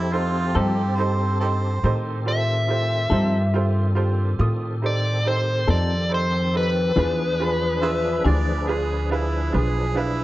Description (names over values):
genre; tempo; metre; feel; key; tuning
blues; 47 BPM (dotted quarters); 12/8; straight; unclear; A4 = 440 Hz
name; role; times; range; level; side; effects
warm harmonica; second line; 0.0-10.2 s; E4 to E5; -28 LUFS; right 3 dB; overdrive, tape echo
bright upright piano; accompaniment; 0.0-10.2 s; C4 to Eb6; -28 LUFS; right 4 dB; none
tonewheel organ; sustained chords; 0.0-10.2 s; Eb3 to B4; -31 LUFS; equal; slow rotary speaker, chorus vibrato, plate reverb
upright bass; bass; 0.0-10.2 s; B1 to A2; -22 LUFS; equal; none
clean electric guitar; accompaniment; 0.6-8.5 s; E3 to A4; -25 LUFS; left 3 dB; harmonic tremolo
dark smooth lead guitar; melody; 2.3-8.2 s; B4 to E5; -24 LUFS; left 1 dB; overdrive, plate reverb
room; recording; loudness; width
light reverb; dark, warm production, nothing above 8.0 kHz; -19 LUFS; side -16 dB against mid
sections
0.0-10.2 A section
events
none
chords
0.0 F7; 7.0 E7b9